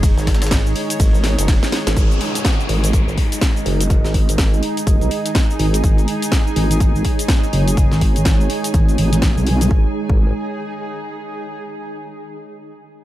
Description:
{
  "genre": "bass house",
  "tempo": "124 BPM",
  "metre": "4/4",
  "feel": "swing 60% on 16ths",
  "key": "unclear",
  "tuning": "A4 = 440 Hz",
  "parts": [
    { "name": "deep dark ambient pad", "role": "sustained chords", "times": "0.0-9.9 s", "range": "G#3 to D#5", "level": "-27 LUFS", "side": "right 3 dB", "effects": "chorus, built-in reverb, sidechain pumping" },
    { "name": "metallic FM bass", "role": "bass", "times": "0.0-0.7 s", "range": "F#1 to G#1", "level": "-20 LUFS", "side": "equal", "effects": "sidechain pumping" },
    { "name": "breakbeat sampler-style drum kit", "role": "drums", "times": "0.0-9.7 s", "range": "hi-hat, snare drum", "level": "-33 LUFS", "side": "equal", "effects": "none" },
    { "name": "electronic kick drum", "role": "drums", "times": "0.0-10.2 s", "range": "none", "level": "-16 LUFS", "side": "equal", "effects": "none" },
    { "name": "house drum kit", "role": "drums", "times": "0.0-9.7 s", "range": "hi-hat, ride cymbal, shaker, snare drum", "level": "-24 LUFS", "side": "left 1 dB", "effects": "none" },
    { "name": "granular cloud pad", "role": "texture", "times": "0.0-11.6 s", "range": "D#4 to G#5", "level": "-27 LUFS", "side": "right 1 dB", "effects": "built-in reverb, sidechain pumping" },
    { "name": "vowel-sweep wobble bass", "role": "bass", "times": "0.2-10.3 s", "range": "F#1 to B1", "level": "-18 LUFS", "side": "equal", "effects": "chorus, overdrive, sidechain pumping" },
    { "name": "downlifter", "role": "sound effects", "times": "2.0-5.8 s", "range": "none", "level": "-29 LUFS", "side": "equal", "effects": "none" }
  ],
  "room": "little or no reverb",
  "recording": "none",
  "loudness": "-14 LUFS",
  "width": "side -14 dB against mid",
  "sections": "0.0-2.0 A section; 2.0-9.7 B section; 9.7-11.6 C section",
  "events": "drop 0.0-2.0; drum fill 1.5-2.0; filter sweep on wobble bass 2.0-9.7",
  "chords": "0.0 G#5",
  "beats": "| 0.03 0.51 1.00 1.48 | 1.97 2.45 2.93 3.42 | 3.90 4.38 4.87 5.35 | 5.84 6.32 6.80 7.29 | 7.77 8.26 8.74 9.22 | 9.71 10.19 10.68 11.16"
}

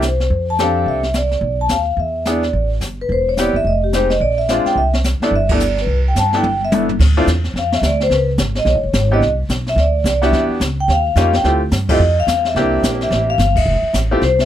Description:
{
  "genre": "jazz, small-group swing and bop",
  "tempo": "216 BPM",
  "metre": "4/4",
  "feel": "swing 61% on 8ths",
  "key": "C major",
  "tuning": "A4 = 437 Hz",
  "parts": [
    { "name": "vibraphone with medium mallets", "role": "melody", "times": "0.0-14.5 s", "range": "G4 to A5", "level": "-17 LUFS", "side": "equal", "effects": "none" },
    { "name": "bright upright piano", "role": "accompaniment", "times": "0.0-14.2 s", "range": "Ab3 to A4", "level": "-19 LUFS", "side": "left 1 dB", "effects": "none" },
    { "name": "upright bass", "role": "bass", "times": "0.0-14.5 s", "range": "E1 to G2", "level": "-18 LUFS", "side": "equal", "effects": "none" },
    { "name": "jazz brush drum kit", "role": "drums", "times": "0.0-14.5 s", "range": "brushed snare drum, crash cymbal, hi-hat, kick drum, ride cymbal, snare drum, toms", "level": "-21 LUFS", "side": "left 1 dB", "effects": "none" }
  ],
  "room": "little or no reverb",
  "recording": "close, detailed microphones",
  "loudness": "-14 LUFS",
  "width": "side -11 dB against mid",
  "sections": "0.0-7.0 A section; 7.0-14.5 B section",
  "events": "band accent 5.5, 11.9, 13.5; drum fill 6.4-7.0",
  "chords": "0.3 F6; 1.4 B(#11); 2.0 E7; 2.5 Am9; 3.6 Fm7; 4.2 Bb9; 4.8 Cmaj13; 7.0 Dmadd9; 8.1 Db7(no3); 9.2 Cmaj7(no3); 10.3 Em7; 10.9 Eb9; 11.4 Dm11; 12.6 C7; 13.7 Fmaj9",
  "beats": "0.03 | 0.31 0.58 0.86 1.14 | 1.42 1.70 1.98 2.26 | 2.54 2.81 3.09 3.37 | 3.65 3.93 4.21 4.49 | 4.76 5.04 5.32 5.60 | 5.88 6.16 6.43 6.71 | 6.99 7.27 7.55 7.83 | 8.11 8.38 8.66 8.94 | 9.22 9.49 9.77 10.05 | 10.33 10.61 10.89 11.16 | 11.44 11.72 12.00 12.28 | 12.55 12.83 13.11 13.39 | 13.67 13.95 14.22"
}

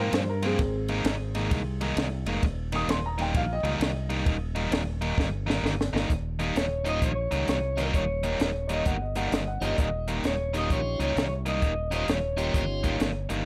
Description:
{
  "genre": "electric blues shuffle",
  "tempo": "130 BPM",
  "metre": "4/4",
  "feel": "swing 64% on 8ths",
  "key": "Eb mixolydian",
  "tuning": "A4 = 440 Hz",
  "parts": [
    { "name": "dark upright piano", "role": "second line", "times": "0.0-4.4, 8.7-10.2 s", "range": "C4 to Eb6", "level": "-35 LUFS", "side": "equal", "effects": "analog delay" },
    { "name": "overdriven electric guitar", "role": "riff", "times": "0.0-13.5 s", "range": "Eb3 to F4", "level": "-33 LUFS", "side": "equal", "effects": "none" },
    { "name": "fingered electric bass", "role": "bass", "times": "0.0-13.5 s", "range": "Eb1 to Ab2", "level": "-33 LUFS", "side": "equal", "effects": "none" },
    { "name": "compact cocktail drum kit", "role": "drums", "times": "0.1-13.4 s", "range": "hi-hat, kick drum, ride cymbal, snare drum", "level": "-32 LUFS", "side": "equal", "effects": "none" },
    { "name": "electric slide guitar", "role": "melody", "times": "6.6-13.3 s", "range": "Bb4 to Eb5", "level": "-33 LUFS", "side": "equal", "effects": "none" },
    { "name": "tonewheel organ", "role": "accompaniment", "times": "6.8-13.0 s", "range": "Db4 to C6", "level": "-38 LUFS", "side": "equal", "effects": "slow rotary speaker, overdrive" }
  ],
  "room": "light reverb",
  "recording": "none",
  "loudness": "-28 LUFS",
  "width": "mono",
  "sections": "0.0-6.1 A section; 6.1-13.5 B section",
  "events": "upright piano solo 0.0-6.1; drum fill 5.2-6.1",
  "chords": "0.0 Bbsus2; 0.6 Abadd9; 2.4 Eb; 6.1 Eb13",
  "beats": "0.13 | 0.59 1.05 1.51 1.97 | 2.42 2.88 3.34 3.80 | 4.26 4.72 5.18 5.64 | 6.10 6.56 7.02 7.48 | 7.94 8.40 8.86 9.32 | 9.78 10.24 10.70 11.16 | 11.62 12.09 12.54 13.01"
}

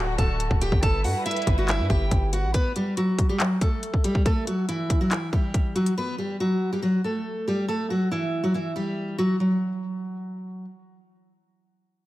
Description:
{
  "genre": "hip hop, trap",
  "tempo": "140 BPM",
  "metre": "4/4",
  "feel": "half-time",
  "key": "unclear",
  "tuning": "A4 = 442 Hz",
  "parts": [
    { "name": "picked steel-string acoustic guitar", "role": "melody", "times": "0.0-10.6 s", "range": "E3 to A5", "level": "-25 LUFS", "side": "equal", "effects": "none" },
    { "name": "muted studio string section", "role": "sustained chords", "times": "0.0-2.5 s", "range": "D3 to B4", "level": "-34 LUFS", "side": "left 2 dB", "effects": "none" },
    { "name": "hard-hitting 808-style bass", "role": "bass", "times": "0.0-2.5 s", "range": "D1 to G2", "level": "-26 LUFS", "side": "equal", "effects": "none" },
    { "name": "trap drum kit", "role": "drums", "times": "0.2-6.0 s", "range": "handclaps, hi-hat, kick drum", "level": "-24 LUFS", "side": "equal", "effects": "vintage 12-bit sampler grit" }
  ],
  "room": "light reverb, small room ambience",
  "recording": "none",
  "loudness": "-22 LUFS",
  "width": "side -16 dB against mid",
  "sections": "0.0-2.5 A section; 2.5-9.4 B section; 9.4-12.1 C section",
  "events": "none",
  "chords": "0.0 D; 0.8 G6; 2.5 N.C.; 4.3 F#7(no3); 6.0 Gmaj7sus2/F#; 7.7 Emadd9; 9.4 N.C.",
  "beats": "0.40 | 0.83 1.26 1.69 2.11 | 2.54 2.97 3.40 3.83 | 4.26 4.68 5.11 5.54 | 5.97 6.40 6.83 7.26 | 7.68 8.11 8.54 8.97 | 9.40 9.83 10.26"
}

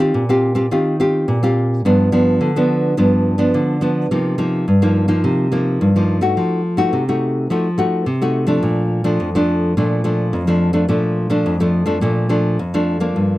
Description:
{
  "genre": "samba",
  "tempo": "106 BPM",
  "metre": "4/4",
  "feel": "straight",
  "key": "Bb major",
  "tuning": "A4 = 441 Hz",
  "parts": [
    { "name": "nylon-string guitar", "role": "solo", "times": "0.0-13.4 s", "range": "F2 to G4", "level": "-14 LUFS", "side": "equal", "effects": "none" }
  ],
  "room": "little or no reverb",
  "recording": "dry, close 1970s-style studio recording",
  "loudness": "-14 LUFS",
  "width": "side -17 dB against mid",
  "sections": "0.0-13.2 A section",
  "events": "none",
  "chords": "0.0 Eb69; 1.8 G7; 4.1 Cm7; 6.4 F7b9; 8.6 Bbmaj7",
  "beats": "0.14 0.71 1.27 | 1.84 2.40 2.97 3.54 | 4.10 4.67 5.23 5.80 | 6.37 6.93 7.50 8.06 | 8.63 9.20 9.76 10.33 | 10.90 11.46 12.03 12.60 | 13.16"
}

